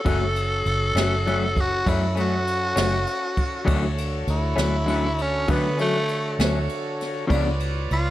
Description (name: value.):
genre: slow blues.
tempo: 66 BPM (dotted quarters).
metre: 12/8.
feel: straight.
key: F# minor.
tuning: A4 = 439 Hz.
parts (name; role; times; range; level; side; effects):
growling tenor saxophone; melody; 0.0-8.1 s; A3 to A4; -25 LUFS; equal; none.
electric guitar through a small old amp; accompaniment; 0.0-7.5 s; F#2 to D4; -26 LUFS; left 3 dB; harmonic tremolo.
bright tonewheel organ; sustained chords; 0.1-8.1 s; D3 to D5; -31 LUFS; equal; overdrive, slow rotary speaker.
vintage muted fingered electric bass; bass; 0.1-8.1 s; F#1 to D3; -25 LUFS; right 1 dB; none.
jazz brush drum kit; drums; 0.1-8.0 s; kick drum, ride cymbal, snare drum; -28 LUFS; equal; none.
room: light reverb.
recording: none.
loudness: -20 LUFS.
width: side -14 dB against mid.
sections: 0.0-8.1 A section.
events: tenor saxophone solo 0.0-8.1.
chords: 0.0 F#m; 3.7 Dmaj7; 7.3 C#7b9.